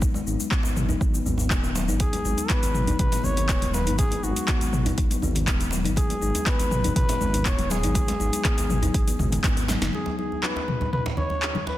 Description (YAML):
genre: afro house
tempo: 121 BPM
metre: 4/4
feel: straight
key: G# minor pentatonic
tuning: A4 = 440 Hz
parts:
  - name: dark detuned saw bass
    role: bass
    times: 0.0-9.9 s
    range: D#1 to G#1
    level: -28 LUFS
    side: equal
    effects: sidechain pumping
  - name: deep house drum kit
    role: drums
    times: 0.0-11.5 s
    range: handclaps, hi-hat, shaker, snare drum, toms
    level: -29 LUFS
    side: left 1 dB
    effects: overdrive
  - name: electronic kick drum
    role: drums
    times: 0.0-9.5 s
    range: none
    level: -24 LUFS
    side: equal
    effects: none
  - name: kalimba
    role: arpeggios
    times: 0.1-9.9 s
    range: F#3 to D#4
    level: -30 LUFS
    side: left 3 dB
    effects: sidechain pumping, tape echo
  - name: djembe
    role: percussion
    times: 0.1-11.8 s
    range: none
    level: -32 LUFS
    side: right 2 dB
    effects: none
  - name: trumpet with bucket mute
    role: melody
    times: 2.0-11.8 s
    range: F#4 to C#5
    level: -30 LUFS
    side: equal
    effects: tape echo
  - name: congas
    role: percussion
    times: 2.0-11.8 s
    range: none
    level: -35 LUFS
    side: left 3 dB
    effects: none
room: light reverb, small room ambience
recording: dense, heavily limited modern master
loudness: -21 LUFS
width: side -14 dB against mid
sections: 0.0-9.9 A section; 9.9-11.8 B section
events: drum fill 9.7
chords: 0.0 G#m; 9.9 N.C.